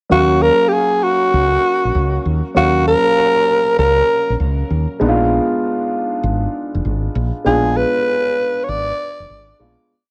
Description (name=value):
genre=R&B, new jack swing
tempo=98 BPM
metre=4/4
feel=swing 67% on 16ths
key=Eb minor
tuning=A4 = 441 Hz
part: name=raspy alto saxophone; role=melody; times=0.1-9.6 s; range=Gb4 to D5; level=-17 LUFS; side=equal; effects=none
part: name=dark baby grand piano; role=accompaniment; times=0.1-9.9 s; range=Gb3 to F5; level=-23 LUFS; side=equal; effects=cassette tape
part: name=woody fretless electric bass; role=bass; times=0.1-9.8 s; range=F1 to Eb2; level=-21 LUFS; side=equal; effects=subtle chorus
room=moderate small room reverb, RT60 0.6 s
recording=home recording on cassette, nothing above 10.5 kHz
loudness=-16 LUFS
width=mono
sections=0.1-9.9 verse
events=fade-out 7.5-9.9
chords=0.1 Ebm7; 5.0 Bb7b9